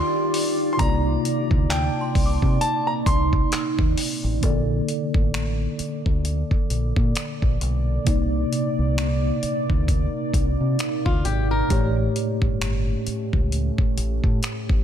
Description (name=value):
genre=contemporary R&B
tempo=66 BPM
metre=4/4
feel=swing 58% on 16ths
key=C dorian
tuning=A4 = 440 Hz
part: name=clear grand piano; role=melody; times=0.0-3.9 s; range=G5 to C6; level=-27 LUFS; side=equal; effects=tape echo
part: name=mellow tine electric piano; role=accompaniment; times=0.0-14.8 s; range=A2 to D5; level=-27 LUFS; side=equal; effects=medium stereo tremolo
part: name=deep dark ambient pad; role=sustained chords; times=0.0-14.8 s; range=C3 to D5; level=-28 LUFS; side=right 2 dB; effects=chorus, built-in reverb, sidechain pumping
part: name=dusty soul sampler-style drum kit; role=drums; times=0.3-14.8 s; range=finger snaps, handclaps, hi-hat, kick drum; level=-23 LUFS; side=equal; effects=none
part: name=deep dub fingered electric bass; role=bass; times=0.8-14.8 s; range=G1 to C3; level=-24 LUFS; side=equal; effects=none
part: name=synth chime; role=texture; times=1.7-3.1 s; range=A5 to D6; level=-36 LUFS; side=left 2 dB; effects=ensemble chorus, tape echo
part: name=fingerpicked swing-style acoustic guitar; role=arpeggios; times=11.1-11.9 s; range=F4 to Bb4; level=-28 LUFS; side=left 3 dB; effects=none
room=digital ambience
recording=none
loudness=-20 LUFS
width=side -9 dB against mid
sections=0.0-4.4 A section; 4.4-14.8 B section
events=none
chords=0.0 Ebmaj9; 0.8 Cm9; 4.4 Bbmaj7; 8.1 Cm9; 11.7 A7